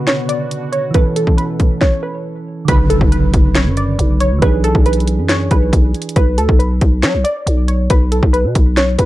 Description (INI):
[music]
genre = hip hop, trap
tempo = 138 BPM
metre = 4/4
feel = half-time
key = B dorian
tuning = A4 = 439 Hz
[part]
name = warbly dusty pluck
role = melody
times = 0.0-9.1 s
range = A4 to D5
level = -19 LUFS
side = equal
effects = chorus, low-pass filter
[part]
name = soft electric-piano-like synth keys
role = accompaniment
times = 0.0-6.2 s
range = C#3 to B4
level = -21 LUFS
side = right 4 dB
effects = chorus, low-pass filter
[part]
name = sweeping resonant pad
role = sustained chords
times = 0.0-1.8 s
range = B2 to A4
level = -25 LUFS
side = left 4 dB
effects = chorus
[part]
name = trap drum kit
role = drums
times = 0.1-9.1 s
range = hi-hat, kick drum, snare drum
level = -14 LUFS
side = equal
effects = vintage 12-bit sampler grit
[part]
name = growling 808-style bass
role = bass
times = 2.7-9.1 s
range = B1 to F#3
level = -15 LUFS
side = equal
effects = none
[part]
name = impact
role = sound effects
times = 2.7-4.4 s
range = none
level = -21 LUFS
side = equal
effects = none
[sound]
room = little or no reverb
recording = dark, warm production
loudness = -12 LUFS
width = side -16 dB against mid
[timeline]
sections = 0.0-2.7 A section; 2.7-9.1 B section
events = stop 1.8-2.7; impact 2.7-4.4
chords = 0.0 Bmadd9; 0.9 A/B; 2.7 Bmadd9; 4.4 E7/B; 6.2 Bm; 7.9 N.C.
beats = 0.07 0.51 | 0.94 1.38 1.81 2.25 | 2.68 3.12 3.55 3.99 | 4.42 4.86 5.29 5.73 | 6.16 6.60 7.03 7.47 | 7.90 8.34 8.77